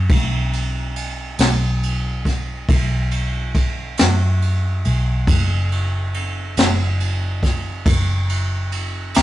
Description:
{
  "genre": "slow blues",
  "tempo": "46 BPM (dotted quarters)",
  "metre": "12/8",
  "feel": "straight",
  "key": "unclear",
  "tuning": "A4 = 441 Hz",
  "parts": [
    { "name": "vintage muted fingered electric bass", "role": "bass", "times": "0.0-9.2 s", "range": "F#1 to F#2", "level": "-20 LUFS", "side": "equal", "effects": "none" },
    { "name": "jazz brush drum kit", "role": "drums", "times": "0.1-9.2 s", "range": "kick drum, ride cymbal, snare drum", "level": "-20 LUFS", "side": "equal", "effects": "none" }
  ],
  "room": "moderate studio reverb, RT60 0.6 s",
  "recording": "rough rehearsal-room recording, nothing above 10.7 kHz",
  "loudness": "-17 LUFS",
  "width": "side -14 dB against mid",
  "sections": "0.0-9.2 A section",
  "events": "none",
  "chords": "none"
}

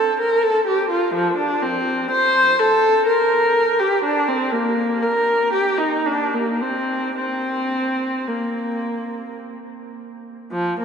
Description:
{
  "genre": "classical, baroque-style suite movement for unaccompanied viola",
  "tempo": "51-64 BPM",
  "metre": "3/4",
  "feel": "rubato",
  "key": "Bb major",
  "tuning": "A4 = 440 Hz",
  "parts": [
    { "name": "warm viola", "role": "solo", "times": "0.0-10.8 s", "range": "F3 to C5", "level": "-18 LUFS", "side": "equal", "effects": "none" }
  ],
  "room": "wet cathedral reverb, RT60 6.5 s",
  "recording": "in a vast, echoing space, nothing above 10.9 kHz",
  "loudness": "-17 LUFS",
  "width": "side -6 dB against mid",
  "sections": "0.0-10.5 A section",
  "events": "none",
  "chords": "none"
}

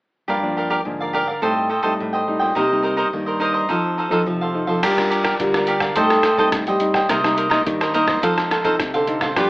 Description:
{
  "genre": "samba and choro",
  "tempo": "106 BPM",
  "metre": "4/4",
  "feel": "straight",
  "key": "G minor",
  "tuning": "A4 = 442 Hz",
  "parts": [
    { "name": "cavaquinho", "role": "accompaniment", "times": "0.3-9.5 s", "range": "Eb4 to G5", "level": "-19 LUFS", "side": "right 1 dB", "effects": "none" },
    { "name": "nylon-string guitar", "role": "accompaniment", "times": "0.3-9.5 s", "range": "G2 to Bb4", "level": "-25 LUFS", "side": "left 1 dB", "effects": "none" },
    { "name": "nylon-string guitar", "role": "bass", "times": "0.3-9.5 s", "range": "G2 to Eb4", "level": "-23 LUFS", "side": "equal", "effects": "none" },
    { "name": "trip hop sampler-style drum kit", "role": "drums", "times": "4.8-9.5 s", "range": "crash cymbal, hi-hat, kick drum, rim click", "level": "-24 LUFS", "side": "equal", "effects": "none" }
  ],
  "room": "moderate studio reverb, RT60 0.8 s",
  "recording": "AM radio sound",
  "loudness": "-17 LUFS",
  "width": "side -22 dB against mid",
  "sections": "0.3-4.8 A section; 4.8-9.5 B section",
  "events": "none",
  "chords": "0.3 Gm7; 1.4 Am7b5; 2.6 Cm7; 3.7 F7; 4.8 Gm7; 6.0 Am7b5; 7.1 Cm7; 8.2 F7"
}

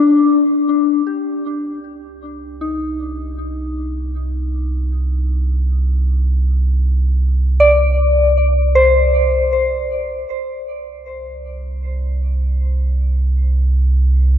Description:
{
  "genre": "ambient",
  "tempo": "free time",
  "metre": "none",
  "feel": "none",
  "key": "C minor",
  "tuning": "A4 = 440 Hz",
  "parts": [
    { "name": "soft synth bell", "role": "arpeggios", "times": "0.0-10.6 s", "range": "D4 to D5", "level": "-16 LUFS", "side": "left 3 dB", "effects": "chorus, ping-pong delay" },
    { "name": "round analog bass", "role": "bass", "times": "1.1-14.4 s", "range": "C2", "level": "-16 LUFS", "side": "right 1 dB", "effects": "none" }
  ],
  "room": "moderate cathedral reverb, RT60 5.1 s",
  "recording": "in a vast, echoing space",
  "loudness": "-14 LUFS",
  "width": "side -9 dB against mid",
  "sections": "0.0-1.1 A section; 1.1-10.3 A section; 10.3-14.4 B section",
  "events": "fade-in on synth bell 1.1-10.3; fade-in on analog synth bass 1.1-10.3",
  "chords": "0.0 N.C.; 1.1 Cm; 10.3 N.C."
}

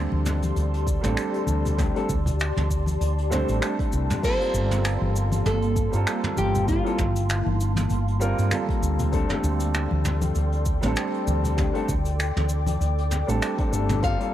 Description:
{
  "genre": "sunset chillout",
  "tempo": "98 BPM",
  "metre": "4/4",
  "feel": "swing 56% on 16ths",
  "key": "unclear",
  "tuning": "A4 = 439 Hz",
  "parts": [
    { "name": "warm concert grand piano", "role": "accompaniment", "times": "0.0-14.3 s", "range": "G3 to C5", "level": "-28 LUFS", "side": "moving between left 5 dB and right 3 dB", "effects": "auto-pan, tape echo" },
    { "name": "ethereal airy pad", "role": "sustained chords", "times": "0.0-14.3 s", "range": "Bb3 to D6", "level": "-32 LUFS", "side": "left 1 dB", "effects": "ensemble chorus, built-in reverb" },
    { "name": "woody fretless electric bass", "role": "bass", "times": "0.0-14.1 s", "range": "G1 to G2", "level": "-24 LUFS", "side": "equal", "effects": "wide subtle chorus" },
    { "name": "congas", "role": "percussion", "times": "0.1-14.0 s", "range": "none", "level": "-32 LUFS", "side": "left 2 dB", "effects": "none" },
    { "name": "vintage brush drum kit", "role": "drums", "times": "0.3-14.3 s", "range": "cabasa, crash cymbal, finger snaps, hi-hat, toms", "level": "-31 LUFS", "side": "right 1 dB", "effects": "none" },
    { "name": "electronic kick drum", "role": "drums", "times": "0.9-14.2 s", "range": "none", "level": "-27 LUFS", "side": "equal", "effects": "none" },
    { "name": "flamenco guitar", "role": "melody", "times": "4.2-7.9, 14.0-14.3 s", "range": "F4 to F5", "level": "-28 LUFS", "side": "right 1 dB", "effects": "analog delay" }
  ],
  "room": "studio reverb",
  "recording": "none",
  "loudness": "-21 LUFS",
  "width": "side -12 dB against mid",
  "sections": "0.0-14.3 A section",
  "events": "none",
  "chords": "0.0 D7sus4; 4.2 Gm11; 9.1 D7sus4"
}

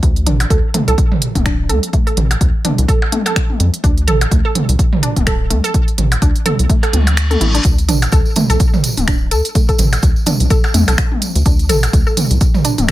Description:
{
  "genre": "minimal techno",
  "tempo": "126 BPM",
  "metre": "4/4",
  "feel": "swing 57% on 16ths",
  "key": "D minor",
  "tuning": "A4 = 443 Hz",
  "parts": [
    { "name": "rubbery square bass", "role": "bass", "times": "0.0-12.9 s", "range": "D1 to F2", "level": "-15 LUFS", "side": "equal", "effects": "sidechain pumping" },
    { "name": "electronic kick drum", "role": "drums", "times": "0.0-12.9 s", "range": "none", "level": "-14 LUFS", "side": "equal", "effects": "none" },
    { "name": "techno drum kit", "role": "drums", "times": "0.0-12.9 s", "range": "finger snaps, hi-hat", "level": "-21 LUFS", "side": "right 2 dB", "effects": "none" },
    { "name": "resonant blip pluck", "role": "riff", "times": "0.3-12.9 s", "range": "A3 to A4", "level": "-21 LUFS", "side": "right 1 dB", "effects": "chorus, sidechain pumping, digital delay" },
    { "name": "electronic toms and percussion blips", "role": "percussion", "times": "0.3-12.9 s", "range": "none", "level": "-19 LUFS", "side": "right 1 dB", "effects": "none" },
    { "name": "reverse cymbal", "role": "sound effects", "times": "6.9-7.6 s", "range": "none", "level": "-22 LUFS", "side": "left 1 dB", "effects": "none" },
    { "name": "tambourine", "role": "percussion", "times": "7.6-12.9 s", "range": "none", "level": "-26 LUFS", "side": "right 2 dB", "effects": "none" }
  ],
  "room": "little or no reverb",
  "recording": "faint mains hum",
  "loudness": "-12 LUFS",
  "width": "side -15 dB against mid",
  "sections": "0.0-7.6 A section; 7.6-12.9 B section",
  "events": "reverse cymbal 6.9-7.6; kick drops out 7.2-7.6; drop 7.6-12.9",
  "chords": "0.0 D5"
}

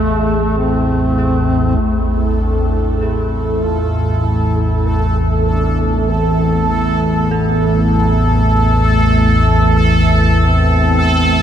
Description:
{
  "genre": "ambient",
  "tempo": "49 BPM",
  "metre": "4/4",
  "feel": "straight",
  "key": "A harmonic minor",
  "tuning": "A4 = 436 Hz",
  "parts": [
    { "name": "mellow duduk", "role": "melody", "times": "0.0-11.4 s", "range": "A3 to F4", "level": "-23 LUFS", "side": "equal", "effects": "diffuse ambient delay" },
    { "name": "deep dark ambient pad", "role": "sustained chords", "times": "0.0-11.4 s", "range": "A3 to E5", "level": "-21 LUFS", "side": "right 1 dB", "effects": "chorus, built-in reverb" },
    { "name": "dark detuned synth bell", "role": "arpeggios", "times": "0.0-11.4 s", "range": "D4 to A4", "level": "-30 LUFS", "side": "equal", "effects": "chorus, diffuse ambient delay" },
    { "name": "analog drone", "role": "drone", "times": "0.0-11.4 s", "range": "A1 to E2", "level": "-14 LUFS", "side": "equal", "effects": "chorus" },
    { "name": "bubbling stepped-filter texture", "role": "texture", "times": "2.2-11.4 s", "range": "A4", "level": "-18 LUFS", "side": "right 2 dB", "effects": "chorus, built-in reverb" }
  ],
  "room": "moderate huge ambient reverb, RT60 8.7 s",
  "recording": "none",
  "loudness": "-12 LUFS",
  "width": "side -9 dB against mid",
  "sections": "0.0-1.8 A section; 1.8-11.4 B section",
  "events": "fade-in on duduk 1.8-11.4; filter sweep on synth drone 1.8-11.4",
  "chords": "0.0 F/A; 1.8 Asus2"
}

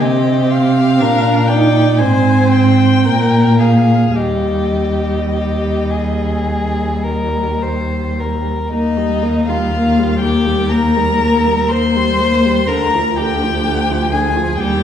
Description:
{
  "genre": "classical, slow romantic movement for string quartet",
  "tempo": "52-63 BPM",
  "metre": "4/4",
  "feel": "rubato",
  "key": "Eb major",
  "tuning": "A4 = 440 Hz",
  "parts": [
    { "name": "warm violin", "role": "melody", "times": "0.0-14.8 s", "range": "Eb5 to C6", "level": "-20 LUFS", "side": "left 4 dB", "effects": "none" },
    { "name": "rich violin", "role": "second line", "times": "0.0-14.8 s", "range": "Eb4 to D5", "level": "-20 LUFS", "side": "left 2 dB", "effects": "none" },
    { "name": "warm viola", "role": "accompaniment", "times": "0.0-14.8 s", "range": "D3 to Eb4", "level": "-16 LUFS", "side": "right 1 dB", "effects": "none" },
    { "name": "warm cello", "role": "bass", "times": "0.0-14.8 s", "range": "D2 to C3", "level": "-17 LUFS", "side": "right 1 dB", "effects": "none" }
  ],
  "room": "wet recital hall reverb, RT60 1.5 s",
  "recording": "heard from further back in the room",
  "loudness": "-12 LUFS",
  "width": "side -9 dB against mid",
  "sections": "0.0-8.7 A section; 8.7-14.8 B section",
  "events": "none",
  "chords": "0.0 Cm7; 2.0 Abmaj7; 3.1 Bb5; 4.2 Eb; 12.7 Bb6/D"
}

